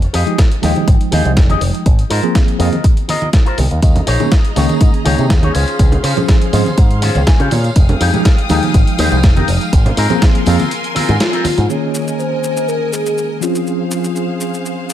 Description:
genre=nu-disco, nu disco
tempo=122 BPM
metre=4/4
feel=straight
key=Ab major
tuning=A4 = 440 Hz
part: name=picked electric bass with an envelope filter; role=bass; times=0.0-11.7 s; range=F1 to Db3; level=-15 LUFS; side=equal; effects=none
part: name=dusty soul sampler-style drum kit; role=drums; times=0.0-14.9 s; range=hi-hat, shaker, snare drum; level=-22 LUFS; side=equal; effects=none
part: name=electric guitar with an envelope filter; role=riff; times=0.1-11.6 s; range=C4 to Ab5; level=-21 LUFS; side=left 3 dB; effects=wide subtle chorus, ping-pong delay
part: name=mellow tine electric piano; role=accompaniment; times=0.3-14.9 s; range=Eb3 to G5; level=-19 LUFS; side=right 1 dB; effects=medium stereo tremolo, sidechain pumping, low-pass filter, ping-pong delay
part: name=electronic kick drum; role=drums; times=0.4-10.3 s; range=none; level=-11 LUFS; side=equal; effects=none
part: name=congas and tambourine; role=percussion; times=0.8-11.7 s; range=none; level=-23 LUFS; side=right 3 dB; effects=none
part: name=clear symphonic string section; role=sustained chords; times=3.8-14.9 s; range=Ab3 to Eb6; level=-25 LUFS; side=left 1 dB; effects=sidechain pumping
part: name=soft octave-layered synth lead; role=melody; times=11.2-14.6 s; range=F4 to Db5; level=-19 LUFS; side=left 1 dB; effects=chorus, phaser, dub echo
room=little or no reverb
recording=none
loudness=-11 LUFS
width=side -11 dB against mid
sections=0.0-11.7 A section; 11.7-14.9 B section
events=filter sweep on tine electric piano 0.0-11.7, 11.7-14.9; clean electric guitar fill 7.0-7.8; break 10.7-11.7; band accent 11.2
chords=0.0 Fm9; 1.9 Ab69; 3.8 Eb7sus4; 5.5 Dbmaj7; 7.8 Fm9; 9.7 Ab69; 11.7 Eb7sus4; 13.4 Dbmaj7

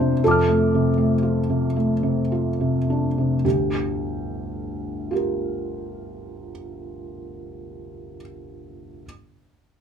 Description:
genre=neoclassical minimalist piano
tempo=34-41 BPM (dotted quarters)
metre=6/8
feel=rubato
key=G minor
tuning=A4 = 441 Hz
part: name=felt-muted upright piano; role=solo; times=0.0-9.1 s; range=G1 to F6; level=-21 LUFS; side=equal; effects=none
room=moderate small room reverb, RT60 0.5 s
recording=none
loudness=-20 LUFS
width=side -8 dB against mid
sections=0.0-3.4 A section; 3.4-6.8 B section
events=slowing down 0.0-3.4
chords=0.0 F6; 3.4 Gm7

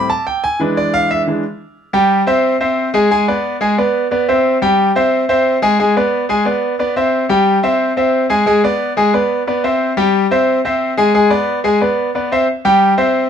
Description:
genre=latin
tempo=179 BPM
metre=4/4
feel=straight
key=unclear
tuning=A4 = 440 Hz
part: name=bright concert grand piano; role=solo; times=0.0-13.3 s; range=E3 to A5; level=-12 LUFS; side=equal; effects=none
room=moderate studio reverb, RT60 0.8 s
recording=dark, warm production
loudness=-12 LUFS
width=side -8 dB against mid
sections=0.0-1.8 A section; 1.8-12.5 B section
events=grand piano solo 0.0-1.8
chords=0.4 E7; 1.8 G#maj7#5/G; 3.1 E7; 4.5 G#maj7#5/G; 5.8 E7 (rootless); 7.1 G#maj7#5/G; 8.5 E7; 9.8 G#maj7#5/G; 11.1 E7 (rootless); 12.5 G#maj7b13/G (rootless)

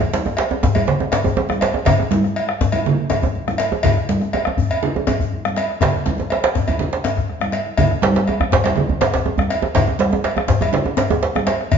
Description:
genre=west african traditional, West African drum ensemble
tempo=122 BPM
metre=4/4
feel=straight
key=none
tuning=none
part: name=bombo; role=percussion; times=0.0-11.8 s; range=none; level=-24 LUFS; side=left 2 dB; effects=none
part: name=djembe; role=percussion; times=0.0-11.6 s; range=none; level=-20 LUFS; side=right 4 dB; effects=none
part: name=congas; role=percussion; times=0.1-11.8 s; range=none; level=-23 LUFS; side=right 3 dB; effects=none
part: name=djembe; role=percussion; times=0.1-11.8 s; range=none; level=-23 LUFS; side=left 6 dB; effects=none
part: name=cowbell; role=percussion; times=0.4-11.8 s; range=none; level=-24 LUFS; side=equal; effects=none
room=wet large studio reverb, RT60 1.2 s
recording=band playing live in one room, nothing above 7.5 kHz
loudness=-16 LUFS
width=side -7 dB against mid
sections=0.0-11.8 A section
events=none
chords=none

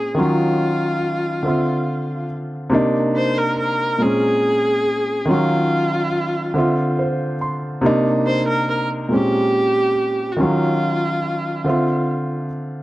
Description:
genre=R&B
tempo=47 BPM (dotted quarters)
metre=6/8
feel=straight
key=unclear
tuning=A4 = 438 Hz
part: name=warm viola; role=melody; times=0.0-12.1 s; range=F4 to C5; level=-21 LUFS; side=equal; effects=none
part: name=warm grand piano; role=accompaniment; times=0.0-12.8 s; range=Bb2 to C6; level=-19 LUFS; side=equal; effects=none
room=moderate spring reverb, RT60 2.4 s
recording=dark, warm production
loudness=-17 LUFS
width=side -17 dB against mid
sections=0.0-12.8 A section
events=grand piano fill 6.6-7.8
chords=0.2 Ebm9; 1.4 Dm9; 2.7 Cm9; 4.0 Bbm9; 5.3 Ebm9; 6.6 Dm9; 7.8 Cm9; 9.1 Bbm9; 10.4 Ebm9; 11.7 Dm9

